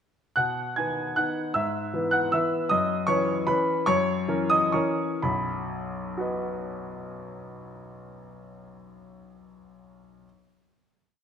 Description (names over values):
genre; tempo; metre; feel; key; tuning
classical, piano waltz; 119-164 BPM; 3/4; rubato; B major; A4 = 440 Hz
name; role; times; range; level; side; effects
clear grand piano; solo; 0.4-10.3 s; B1 to G#6; -24 LUFS; equal; none
room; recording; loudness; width
moderate scoring stage reverb, RT60 1.5 s; minimal, uncompressed stereo recording; -24 LUFS; side -8 dB against mid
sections
0.4-5.2 A section; 5.2-8.1 final chord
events
slowing down 2.1-5.2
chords
0.4 B; 1.6 E/G#; 2.7 F#7sus4; 3.9 F#7; 5.2 B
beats
| 0.36 0.77 1.17 | 1.55 1.93 2.33 | 2.71 3.08 3.48 | 3.87 4.28 4.74 | 5.23 5.69 6.17 | 6.66 7.13 7.62